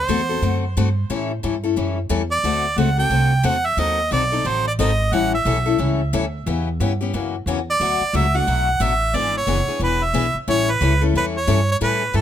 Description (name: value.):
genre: acoustic string swing (jazz manouche).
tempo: 179 BPM.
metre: 4/4.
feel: swing 62% on 8ths.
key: A mixolydian.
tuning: A4 = 442 Hz.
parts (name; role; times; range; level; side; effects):
clear harmonica; melody; 0.0-12.2 s; A4 to G5; -21 LUFS; right 2 dB; tape echo.
upright bass; bass; 0.0-12.2 s; E1 to A2; -22 LUFS; right 1 dB; none.
picked steel-string acoustic guitar; accompaniment; 0.1-12.2 s; B2 to A4; -23 LUFS; left 8 dB; none.
room: little or no reverb.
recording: close, detailed microphones.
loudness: -17 LUFS.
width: side -10 dB against mid.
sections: 0.0-12.2 A section.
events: none.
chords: 0.0 D7; 1.1 A7; 2.4 D7; 3.8 D#dim7; 5.1 A7; 6.5 C#m7b5; 7.1 F#7; 7.8 Bm7; 9.1 E7; 10.5 A7.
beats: 0.09 0.43 0.76 | 1.10 1.43 1.77 2.10 | 2.44 2.77 3.11 3.45 | 3.78 4.12 4.45 4.79 | 5.12 5.46 5.79 6.13 | 6.46 6.80 7.13 7.47 | 7.80 8.14 8.47 8.81 | 9.14 9.47 9.81 10.14 | 10.48 10.81 11.14 11.48 | 11.81 12.14.